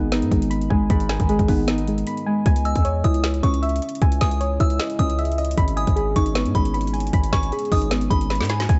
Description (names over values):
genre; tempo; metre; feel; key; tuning
hip hop, trap; 154 BPM; 4/4; half-time; C# minor; A4 = 440 Hz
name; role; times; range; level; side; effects
Celtic harp; accompaniment; 0.0-4.6 s; G#2 to D#5; -27 LUFS; equal; low-pass filter
soft round pluck; arpeggios; 0.0-8.8 s; G#3 to B5; -27 LUFS; equal; chorus, low-pass filter, digital delay
distorted 808-style bass; bass; 0.0-8.8 s; G#1 to G#2; -26 LUFS; equal; distortion
trap drum kit; drums; 0.1-8.8 s; hi-hat, kick drum, snare drum; -24 LUFS; equal; none
deep dark ambient pad; sustained chords; 3.8-8.8 s; C#3 to E4; -36 LUFS; equal; chorus, built-in reverb
delicate synth tine bell; second line; 2.7-8.3 s; B5 to E6; -32 LUFS; equal; chorus, digital delay
room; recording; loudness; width
light reverb, digital ambience; dark, warm production, nothing above 7.9 kHz; -21 LUFS; mono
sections
0.0-2.5 A section; 2.5-8.8 B section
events
drum fill 8.3-8.7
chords
0.0 G#m; 2.5 C#madd9; 5.6 G#m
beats
0.12 0.51 | 0.90 1.29 1.68 2.07 | 2.46 2.85 3.24 3.63 | 4.02 4.41 4.80 5.19 | 5.58 5.96 6.35 6.74 | 7.13 7.52 7.91 8.30 | 8.69